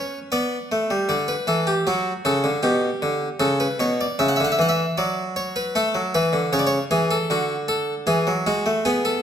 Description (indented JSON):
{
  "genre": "classical, baroque-style two-part invention for harpsichord",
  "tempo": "77 BPM",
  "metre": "3/4",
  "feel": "straight",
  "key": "D major",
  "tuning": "A4 = 440 Hz",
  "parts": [
    { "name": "harpsichord", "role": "solo", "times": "0.0-9.2 s", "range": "B2 to F#5", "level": "-20 LUFS", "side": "equal", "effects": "none" }
  ],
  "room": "moderate recital hall reverb, RT60 1.6 s",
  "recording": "none",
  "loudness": "-19 LUFS",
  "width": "side -8 dB against mid",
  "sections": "0.0-1.1 A section; 1.1-9.2 B section",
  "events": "none",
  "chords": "0.3 Bm; 1.1 D; 2.7 G/B; 3.4 A (rootless); 5.0 D/F#; 5.8 A; 7.3 D; 8.1 E",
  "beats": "0.31 | 1.09 1.87 2.65 | 3.43 4.21 4.98 | 5.76 6.53 7.30 | 8.08 8.85"
}